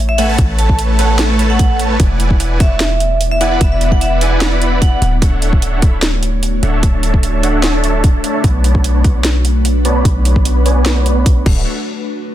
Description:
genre	future bass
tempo	149 BPM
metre	4/4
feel	half-time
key	D major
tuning	A4 = 440 Hz
part	ethereal airy pad	sustained chords	0.0-11.6 s	A3 to D5	-23 LUFS	left 1 dB	ensemble chorus, built-in reverb, sidechain pumping
part	warm 808-style bass	bass	0.0-11.6 s	D1 to B1	-15 LUFS	equal	sidechain pumping
part	vibraphone with medium hard mallets	melody	0.1-5.1 s	E5 to A5	-20 LUFS	right 1 dB	sidechain pumping, ping-pong delay
part	supersaw chords	riff	0.2-11.6 s	A3 to C#6	-19 LUFS	right 1 dB	sidechain pumping, low-pass filter, dub echo
part	trap drum kit	drums	0.2-11.5 s	crash cymbal, hi-hat, snare drum	-20 LUFS	right 1 dB	none
part	electronic kick drum	drums	0.4-11.5 s	none	-12 LUFS	equal	none
room	digital ambience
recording	dense, heavily limited modern master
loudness	-11 LUFS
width	side -12 dB against mid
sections	0.0-11.7 A section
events	filter sweep on supersaw synth 0.0-11.7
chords	0.0 Amaj7; 2.0 E7; 5.0 Dmaj7; 8.4 Bm7; 11.5 Dmaj7; 11.7 N.C.

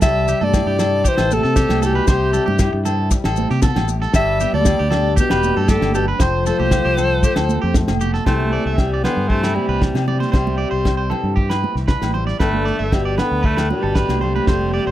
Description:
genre	highlife guitar band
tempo	116 BPM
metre	4/4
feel	straight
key	C major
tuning	A4 = 439 Hz
part	bright alto saxophone	melody	0.0-14.9 s	G3 to E5	-21 LUFS	equal	none
part	breathy trombone	second line	0.0-14.9 s	B2 to G3	-26 LUFS	left 10 dB	none
part	nylon-string guitar	accompaniment	0.0-14.9 s	F2 to G4	-29 LUFS	left 4 dB	none
part	electric guitar at the edge of break-up	arpeggios	0.0-14.9 s	E4 to E5	-25 LUFS	right 4 dB	tape echo
part	fingered electric bass	bass	0.0-14.9 s	E1 to C3	-21 LUFS	equal	none
part	warm soul drum kit	drums	0.0-14.6 s	kick drum, snare drum	-18 LUFS	equal	none
part	agogo bells	percussion	0.0-14.6 s	none	-30 LUFS	left 17 dB	none
part	maracas	percussion	0.0-8.1 s	none	-32 LUFS	left 17 dB	none
part	congas	percussion	0.3-14.7 s	none	-27 LUFS	right 8 dB	none
room	little or no reverb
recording	none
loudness	-15 LUFS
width	side -13 dB against mid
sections	0.0-8.3 A section; 8.3-14.9 B section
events	none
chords	0.0 C; 4.1 G; 6.2 F; 8.3 C; 12.4 G

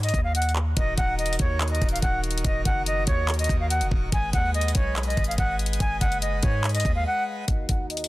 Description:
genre	hip hop, trap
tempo	143 BPM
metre	4/4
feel	half-time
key	Eb minor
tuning	A4 = 440 Hz
part	reedy silver concert flute	melody	0.0-8.1 s	Db5 to Ab5	-27 LUFS	equal	low-pass filter, tape echo
part	warm 808-style bass	bass	0.0-7.1 s	Eb1 to Ab2	-26 LUFS	equal	none
part	trap drum kit	drums	0.0-8.1 s	handclaps, hi-hat, kick drum	-26 LUFS	equal	none
part	pipe organ, full organ	sustained chords	0.8-8.1 s	Eb2 to Eb5	-35 LUFS	equal	low-pass filter
room	little or no reverb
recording	dense, heavily limited modern master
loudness	-22 LUFS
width	side -18 dB against mid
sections	0.0-7.5 A section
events	break 7.1-7.5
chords	0.0 Ab5; 0.8 Ebm; 4.1 Abm; 7.5 Ebm

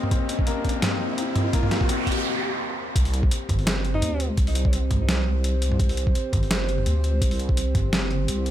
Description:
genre	half-time drum and bass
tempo	169 BPM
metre	4/4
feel	swing 54% on 16ths, half-time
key	C minor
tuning	A4 = 440 Hz
part	dark analog pad	sustained chords	0.0-8.5 s	C4 to Eb5	-32 LUFS	right 2 dB	chorus, sidechain pumping
part	felt-muted upright piano	arpeggios	0.0-3.0 s	Bb3 to C4	-31 LUFS	left 5 dB	tape echo
part	boom bap sampler-style drum kit	drums	0.0-8.5 s	hi-hat, snare drum, toms	-27 LUFS	equal	none
part	riser and noise sweep	sound effects	0.0-3.0 s	none	-30 LUFS	equal	none
part	electronic kick drum	drums	0.1-7.8 s	none	-23 LUFS	equal	none
part	deep soft wobble bass	bass	3.0-8.5 s	G1 to D2	-24 LUFS	equal	chorus
part	mellow alto saxophone	melody	3.9-4.3 s	Eb4	-37 LUFS	left 1 dB	none
room	little or no reverb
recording	none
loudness	-21 LUFS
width	side -12 dB against mid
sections	0.0-3.0 A section; 3.0-8.5 B section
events	build-up 0.0-3.0; riser 0.0-2.2; noise sweep 1.5-3.0; break 2.2-3.0; drop 3.0-8.5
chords	0.0 C5

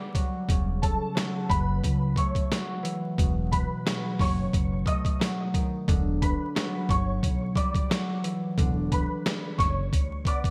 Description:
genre	hip hop, boom-bap hip-hop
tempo	89 BPM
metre	4/4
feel	swing 56% on 16ths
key	E dorian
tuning	A4 = 438 Hz
part	concert harp	accompaniment	0.0-10.5 s	B2 to B3	-33 LUFS	equal	high-pass filter, low-pass filter
part	boom bap sampler-style drum kit	drums	0.1-10.5 s	hi-hat, kick drum, snare drum	-30 LUFS	equal	gated reverb
part	upright bass	bass	0.5-10.2 s	E1 to D2	-31 LUFS	equal	none
part	warm upright piano	melody	0.8-10.5 s	A4 to D#6	-35 LUFS	equal	ensemble chorus, high-pass filter, low-pass filter, digital delay
room	light reverb, small room ambience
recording	bright 1980s-style digital production, vinyl crackle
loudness	-27 LUFS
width	mono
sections	0.0-10.5 A section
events	none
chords	0.5 F#m7/E; 3.2 B7/E; 5.9 Em9

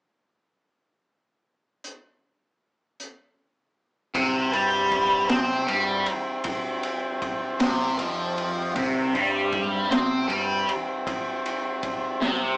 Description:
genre	psychedelic rock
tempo	52 BPM (dotted quarters)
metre	6/8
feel	straight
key	C major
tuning	A4 = 440 Hz
part	crunchy breakbeat drum kit	drums	1.8-12.4 s	hi-hat, kick drum, ride cymbal, snare drum	-29 LUFS	equal	none
part	thick fuzz guitar	riff	4.1-12.6 s	C3 to C4	-23 LUFS	equal	distortion, phaser
part	growling picked electric bass	bass	4.1-12.6 s	C2 to C3	-33 LUFS	equal	overdrive
part	combo organ	sustained chords	4.2-12.6 s	G3 to E5	-31 LUFS	equal	none
room	wet small room reverb, RT60 0.5 s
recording	rough rehearsal-room recording, small speaker sound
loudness	-22 LUFS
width	side -34 dB against mid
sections	1.8-4.1 A section; 4.1-12.6 B section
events	drum fill 12.2-12.6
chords	1.8 N.C.; 4.1 C

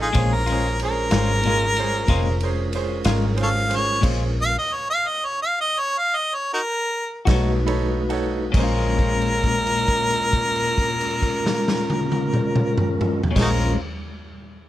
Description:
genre	slow blues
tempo	45-62 BPM (dotted quarters)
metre	12/8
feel	straight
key	Bb minor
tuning	A4 = 440 Hz
part	warm harmonica	melody	0.0-13.8 s	Eb4 to F5	-22 LUFS	equal	none
part	bright grand piano	accompaniment	0.0-13.8 s	Db4 to B5	-30 LUFS	right 8 dB	none
part	mellow tonewheel organ	sustained chords	0.0-13.8 s	D3 to B4	-28 LUFS	left 1 dB	slow rotary speaker
part	vintage muted fingered electric bass	bass	0.0-13.7 s	F1 to B1	-24 LUFS	equal	none
part	clean electric guitar	accompaniment	0.1-13.8 s	Bb2 to F#4	-27 LUFS	left 6 dB	harmonic tremolo
part	raw garage drum kit	drums	0.1-13.6 s	crash cymbal, kick drum, ride cymbal, snare drum, toms	-24 LUFS	equal	none
room	light reverb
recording	none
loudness	-19 LUFS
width	side -13 dB against mid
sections	0.0-8.5 A section; 8.5-13.9 B section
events	harmonica solo 0.0-8.5; slowing down 2.7-8.5; grand piano fill 7.3-8.5; held note 8.5-13.4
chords	0.2 Bbm7; 7.3 B7; 8.5 Bbm7

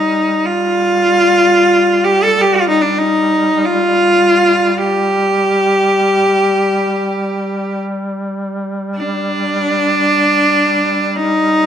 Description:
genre	caucasian folk, Caucasian lament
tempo	free time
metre	none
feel	none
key	unclear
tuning	A4 = 440 Hz
part	clear cello	melody	0.0-11.7 s	D4 to A4	-12 LUFS	equal	none
part	warm duduk	drone	0.0-11.7 s	G3	-21 LUFS	right 1 dB	none
room	moderate concert hall reverb, RT60 1.9 s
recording	minimal, uncompressed stereo recording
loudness	-12 LUFS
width	side -9 dB against mid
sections	0.0-11.7 A section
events	none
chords	none

